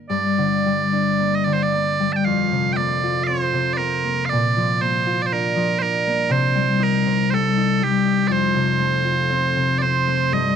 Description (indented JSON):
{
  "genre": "celtic folk, Celtic slow air",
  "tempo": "56-62 BPM",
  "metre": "4/4",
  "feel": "rubato",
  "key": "unclear",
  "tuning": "A4 = 444 Hz",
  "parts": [
    { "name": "concert harp", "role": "accompaniment", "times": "0.0-10.6 s", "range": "F2 to F4", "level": "-20 LUFS", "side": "left 3 dB", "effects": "none" },
    { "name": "loud bright bagpipes", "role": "melody", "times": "0.1-10.6 s", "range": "G4 to A5", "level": "-21 LUFS", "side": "right 5 dB", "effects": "none" }
  ],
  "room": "little or no reverb",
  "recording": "dry, close 1970s-style studio recording",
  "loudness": "-17 LUFS",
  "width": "side -8 dB against mid",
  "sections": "0.1-10.6 A section",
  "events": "none",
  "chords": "0.1 Gm; 2.2 Fsus4; 4.3 Bb; 6.3 Cm; 8.3 F",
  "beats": "| 0.10 1.18 2.24 3.27 | 4.31 5.32 6.32 7.33 | 8.32 9.30 10.31"
}